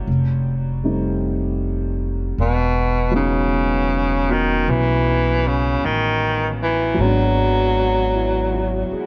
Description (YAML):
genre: jazz ballad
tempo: 52 BPM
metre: 4/4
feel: swing 66% on 8ths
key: E major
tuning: A4 = 440 Hz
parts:
  - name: dark baby grand piano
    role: accompaniment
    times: 0.0-9.1 s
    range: F#3 to G#4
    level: -26 LUFS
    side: equal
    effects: none
  - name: upright bass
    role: bass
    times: 0.0-8.9 s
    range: E1 to B1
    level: -24 LUFS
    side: equal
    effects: none
  - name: breathy baritone saxophone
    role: melody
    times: 2.4-8.9 s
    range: B2 to F#3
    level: -23 LUFS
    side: equal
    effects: dub echo
room: light reverb, studio ambience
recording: echo-heavy mix, cassette tape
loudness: -19 LUFS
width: mono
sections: 0.0-9.1 A section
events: none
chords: 0.1 F9; 2.4 Emaj9; 7.0 G#m7b5